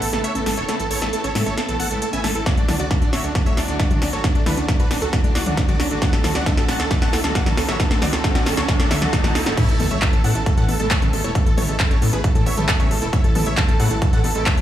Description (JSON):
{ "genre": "uplifting trance", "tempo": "135 BPM", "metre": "4/4", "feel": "straight", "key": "A major", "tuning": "A4 = 440 Hz", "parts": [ { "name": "dense compressed supersaw", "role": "melody", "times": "0.0-14.6 s", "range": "D4 to A5", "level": "-25 LUFS", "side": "right 2 dB", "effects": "cassette tape, sidechain pumping, digital delay" }, { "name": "muted studio string section", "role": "sustained chords", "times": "0.0-14.6 s", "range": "C#3 to F#4", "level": "-29 LUFS", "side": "equal", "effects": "sidechain pumping" }, { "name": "wide unison pluck", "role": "arpeggios", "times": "0.0-14.6 s", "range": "D3 to A4", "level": "-28 LUFS", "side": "left 3 dB", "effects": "cassette tape, sidechain pumping, digital delay" }, { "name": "tight sequencer bass", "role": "bass", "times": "0.0-14.6 s", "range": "D1 to A2", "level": "-25 LUFS", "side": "equal", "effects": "sidechain pumping" }, { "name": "big-room dance drum kit", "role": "drums", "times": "0.0-14.6 s", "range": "crash cymbal, handclaps, hi-hat, snare drum, toms", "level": "-24 LUFS", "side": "equal", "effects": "sidechain pumping on hats, sidechain pumping on toms, sidechain pumping on cymbals" }, { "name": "electronic kick drum", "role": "drums", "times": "2.5-14.6 s", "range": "none", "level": "-19 LUFS", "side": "equal", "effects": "none" }, { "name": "riser and sub drop", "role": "sound effects", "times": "5.0-11.4 s", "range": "none", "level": "-29 LUFS", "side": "right 1 dB", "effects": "none" } ], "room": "little or no reverb", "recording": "studio reverb", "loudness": "-17 LUFS", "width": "side -12 dB against mid", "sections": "0.0-9.6 A section; 9.6-14.6 B section", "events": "build-up 0.0-9.6; drum fill 0.0-9.6; filter sweep on synth arpeggio sound 0.0-9.6; riser 5.0-9.6; drop 9.6-14.6; impact 9.6-11.4", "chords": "0.0 Aadd9; 2.5 D; 9.6 Aadd9", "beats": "0.24 | 0.69 1.13 1.57 2.02 | 2.46 2.91 3.35 3.80 | 4.24 4.68 5.13 5.57 | 6.02 6.46 6.91 7.35 | 7.80 8.24 8.69 9.13 | 9.57 10.02 10.46 10.91 | 11.35 11.80 12.24 12.69 | 13.13 13.57 14.02 14.46" }